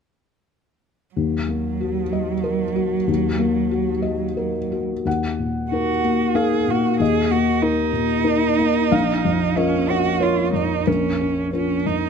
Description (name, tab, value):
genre	neoclassical piano and strings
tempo	93 BPM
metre	3/4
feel	rubato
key	Eb minor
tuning	A4 = 442 Hz
part	warm cello	second line	1.1-12.1 s	Gb3 to Ab4	-23 LUFS	right 10 dB	none
part	felt-muted upright piano	accompaniment	1.2-12.1 s	Bb1 to Gb5	-20 LUFS	left 4 dB	none
room	light reverb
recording	close, detailed microphones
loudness	-18 LUFS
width	side -6 dB against mid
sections	1.2-5.1 A section; 5.1-12.1 B section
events	none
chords	1.2 Ebm; 8.9 Bbm